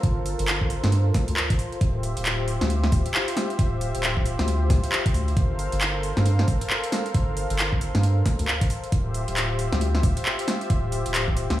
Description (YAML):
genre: UK garage, two-step garage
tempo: 135 BPM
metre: 4/4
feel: swing 61% on 16ths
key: G minor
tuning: A4 = 442 Hz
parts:
  - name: warm analog pad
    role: sustained chords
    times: 0.0-11.6 s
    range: F4 to F5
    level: -30 LUFS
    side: left 1 dB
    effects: chorus, sidechain pumping
  - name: saturated sub bass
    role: bass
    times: 0.0-11.6 s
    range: D1 to G2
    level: -24 LUFS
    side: equal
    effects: none
  - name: electronic kick drum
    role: drums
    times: 0.0-11.3 s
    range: none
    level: -23 LUFS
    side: equal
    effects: overdrive
  - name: garage drum kit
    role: drums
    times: 0.0-11.6 s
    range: handclaps, hi-hat, snare drum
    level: -27 LUFS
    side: equal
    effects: overdrive
room: little or no reverb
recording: studio reverb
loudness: -21 LUFS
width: side -14 dB against mid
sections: 0.0-11.6 A section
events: none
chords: 0.0 Gm11; 1.8 Dm11; 5.4 Gm11; 8.9 Dm11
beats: | 0.03 0.48 0.92 1.37 | 1.81 2.26 2.70 3.15 | 3.59 4.03 4.48 4.92 | 5.37 5.81 6.26 6.70 | 7.14 7.59 8.03 8.48 | 8.92 9.37 9.81 10.26 | 10.70 11.14 11.59